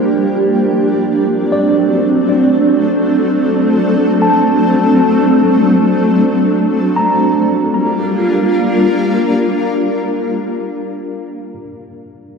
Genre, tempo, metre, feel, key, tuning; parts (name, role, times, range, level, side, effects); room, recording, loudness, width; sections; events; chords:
ambient; free time; A4 = 439 Hz
granular cloud pad; sustained chords; 0.0-10.8 s; F3 to Bb4; -12 LUFS; equal; built-in reverb
overdriven tine electric piano; arpeggios; 0.0-12.4 s; G4 to Bb5; -21 LUFS; left 1 dB; fast tremolo, analog delay
wet echo chamber reverb, RT60 2.5 s; echo-heavy mix; -11 LUFS; side -5 dB against mid
0.0-7.0 A section; 7.0-10.1 B section
filter sweep on ambient pad 0.0-7.0
0.0 Gm7; 0.7 D7; 7.0 Gm7